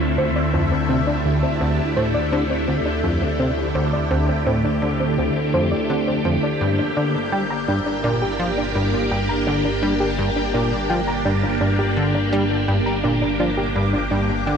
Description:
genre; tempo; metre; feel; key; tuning
ambient, sequencer-driven space music; 84 BPM; 4/4; straight; unclear; A4 = 443 Hz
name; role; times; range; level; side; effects
phased string machine; sustained chords; 0.0-14.6 s; D3 to G4; -22 LUFS; equal; ensemble chorus, phaser
fat analog bass; bass; 0.0-14.6 s; G1 to D2; -27 LUFS; equal; none
soft round pluck; arpeggios; 0.2-14.6 s; C4 to Bb5; -26 LUFS; right 1 dB; chorus, auto-pan, cassette tape, ping-pong delay
plucky analog bass; riff; 0.2-14.6 s; D2 to G3; -24 LUFS; equal; ping-pong delay
room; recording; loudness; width
wet huge ambient reverb, RT60 8.0 s; cassette tape; -18 LUFS; side -7 dB against mid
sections
0.0-14.6 A section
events
none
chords
0.0 Dm7; 6.6 Gm

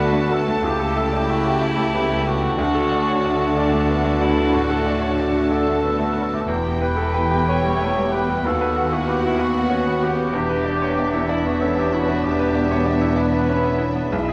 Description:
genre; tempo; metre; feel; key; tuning
classical, romantic movement for piano and orchestra; 62 BPM (dotted quarters); 12/8; rubato; unclear; A4 = 440 Hz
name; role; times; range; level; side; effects
bright grand piano; melody; 0.0-14.3 s; B1 to E5; -27 LUFS; equal; none
warm studio violin section; melody; 0.0-14.3 s; E5 to A5; -37 LUFS; equal; none
mellow cor anglais; second line; 0.0-14.1 s; D4 to C#5; -30 LUFS; equal; none
silver concert flute; second line; 0.0-14.3 s; E5 to G5; -34 LUFS; equal; none
warm clarinet; second line; 0.0-14.3 s; D4 to F#4; -30 LUFS; equal; none
warm studio violin section; second line; 0.0-14.3 s; D4 to G4; -35 LUFS; equal; none
clear bassoon; accompaniment; 0.0-14.3 s; G#3 to B3; -32 LUFS; equal; none
dark studio viola section; accompaniment; 0.0-14.3 s; G#3 to E4; -32 LUFS; equal; none
mellow French horn section; sustained chords; 0.0-14.3 s; G#3 to G4; -30 LUFS; equal; none
dark trumpet section; stabs; 0.0-14.1 s; D4 to C#5; -31 LUFS; equal; none
warm studio cello section; bass; 0.0-14.3 s; D#2 to D3; -30 LUFS; equal; none
warm studio double bass section; bass; 0.0-14.3 s; E1 to D#2; -31 LUFS; equal; none
room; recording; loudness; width
wet scoring stage reverb, RT60 2.1 s; none; -20 LUFS; mono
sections
0.0-14.3 A section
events
none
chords
0.0 D; 0.6 A7/C#; 2.6 D; 6.5 Em; 8.4 B/D#; 10.3 Em7

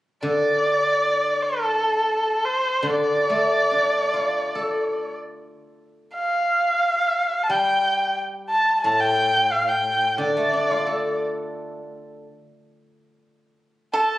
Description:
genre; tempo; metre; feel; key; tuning
chinese traditional, Chinese chamber ensemble; 69-90 BPM; 2/4; rubato; D yu mode; A4 = 441 Hz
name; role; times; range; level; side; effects
steel-string zither; accompaniment; 0.2-12.2 s; A2 to A4; -26 LUFS; left 1 dB; none
warm erhu; melody; 0.3-11.2, 13.9-14.2 s; A4 to A5; -20 LUFS; equal; none
pipa; second line; 13.9-14.2 s; A4; -23 LUFS; right 3 dB; none
room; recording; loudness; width
moderate recital hall reverb, RT60 1.4 s; recorded on a phone in the room, club reverb; -19 LUFS; side -16 dB against mid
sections
0.0-6.2 A section; 6.2-14.2 B section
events
none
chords
none

